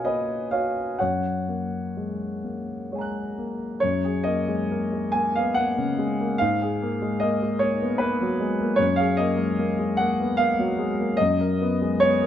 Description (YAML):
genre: classical, impressionist solo piano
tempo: 61-77 BPM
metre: 3/4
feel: rubato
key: F# major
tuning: A4 = 440 Hz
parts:
  - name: clear concert grand piano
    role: solo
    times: 0.0-12.3 s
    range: F#2 to F#6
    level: -22 LUFS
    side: equal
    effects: none
room: wet recital hall reverb, RT60 1.5 s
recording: close, detailed microphones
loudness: -22 LUFS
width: side -10 dB against mid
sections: 0.0-3.8 A section; 3.8-12.3 A section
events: none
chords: 0.0 Bmaj7; 1.0 F#add9; 3.8 F#69; 6.4 G#m9; 8.8 F#maj9; 11.2 G#m9/F#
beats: 0.06 | 0.99 1.97 2.91 | 3.82 4.69 5.55 | 6.38 7.21 8.01 | 8.80 9.59 10.39 | 11.18 11.99